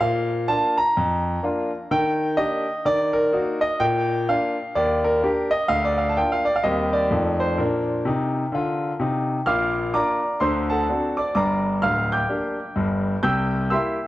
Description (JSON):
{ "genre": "jazz, stride piano", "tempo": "127 BPM", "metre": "4/4", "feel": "swing 62% on 8ths", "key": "Bb major", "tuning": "A4 = 439 Hz", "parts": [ { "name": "clear concert grand piano", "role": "solo", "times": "0.0-14.1 s", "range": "D1 to G6", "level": "-20 LUFS", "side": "equal", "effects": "none" } ], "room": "wet spring reverb, RT60 1.7 s", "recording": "worn, warbling old tape, cassette tape, warbly pitch drift", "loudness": "-20 LUFS", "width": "side -16 dB against mid", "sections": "0.0-9.5 A section; 9.5-14.1 A section", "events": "none", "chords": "0.0 Bb; 1.9 Ebmaj7; 2.9 Ebm; 3.8 Bb; 4.7 Ebmaj7; 5.7 Bb/D; 6.6 Cm/Eb; 7.1 F7; 7.6 Bb; 10.4 D7; 11.4 Gm; 13.2 C7" }